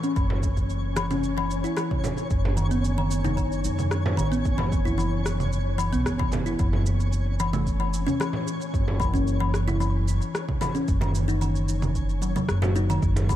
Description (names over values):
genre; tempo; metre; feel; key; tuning
organic downtempo; 112 BPM; 4/4; straight; unclear; A4 = 440 Hz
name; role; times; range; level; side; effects
kalimba; arpeggios; 0.0-13.4 s; D#3 to F#4; -27 LUFS; left 1 dB; digital delay
afro-pop drum kit; drums; 0.0-13.4 s; congas, hi-hat, rim click, shaker; -33 LUFS; right 3 dB; small room ambience
twinkling granular texture; texture; 0.0-13.0 s; C#4 to C#5; -35 LUFS; left 2 dB; built-in reverb
upright bass; bass; 0.2-13.4 s; F#1 to F#2; -25 LUFS; equal; tube saturation, sidechain pumping
electronic kick drum; drums; 0.2-13.4 s; none; -27 LUFS; equal; small room ambience
frame drum; percussion; 0.3-13.3 s; none; -34 LUFS; right 3 dB; none
granular cloud pad; sustained chords; 13.0-13.4 s; none; barely audible; none; none
room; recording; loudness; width
small room ambience; dark, warm production; -22 LUFS; side -12 dB against mid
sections
0.0-13.0 A section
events
none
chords
0.2 C#m/F#; 2.3 B/F#; 4.5 E5/F#; 6.6 F#7(no3); 8.7 C#m/F#; 10.9 D#m7/F#